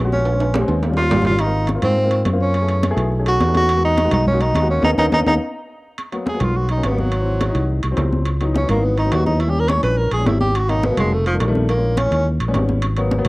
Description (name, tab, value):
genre	Afro-Cuban jazz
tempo	210 BPM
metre	4/4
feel	straight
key	G# minor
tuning	A4 = 442 Hz
part	warm baby grand piano	accompaniment	0.0-13.3 s	B2 to B4	-24 LUFS	left 2 dB	cassette tape
part	fingered electric bass	bass	0.0-13.3 s	E#1 to G#2	-19 LUFS	equal	none
part	breathy tenor saxophone	melody	0.1-12.3 s	F3 to C#5	-20 LUFS	right 1 dB	cassette tape
part	congas	percussion	0.1-13.3 s	none	-24 LUFS	equal	none
part	timbales	percussion	0.3-13.3 s	none	-27 LUFS	right 2 dB	none
room	moderate spring reverb, RT60 1.7 s, studio reverb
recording	home recording on cassette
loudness	-15 LUFS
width	side -22 dB against mid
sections	0.0-6.0 A section; 6.0-13.3 B section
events	drum fill 0.3-1.4, 5.1-6.0; band accent 4.8-6.0; tenor saxophone solo 6.0-13.3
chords	0.3 A#m9; 0.8 D#9; 1.4 G#69; 2.5 F#m11; 3.1 B13; 3.7 Emaj9#11; 4.8 D#5; 6.0 G#m9; 7.1 G#7b13; 8.3 C#m11; 9.4 D#7b9; 10.6 G#m9; 11.1 F7; 11.7 A#m7b5; 12.3 D#7b13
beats	| 0.26 0.54 0.83 1.11 | 1.40 1.69 1.97 2.26 | 2.54 2.83 3.12 3.40 | 3.69 3.98 4.26 4.55 | 4.83 5.12 5.41 5.69 | 5.98 6.27 6.55 6.84 | 7.12 7.41 7.70 7.98 | 8.27 8.55 8.84 9.12 | 9.41 9.70 9.98 10.27 | 10.55 10.84 11.12 11.40 | 11.69 11.97 12.26 12.54 | 12.83 13.11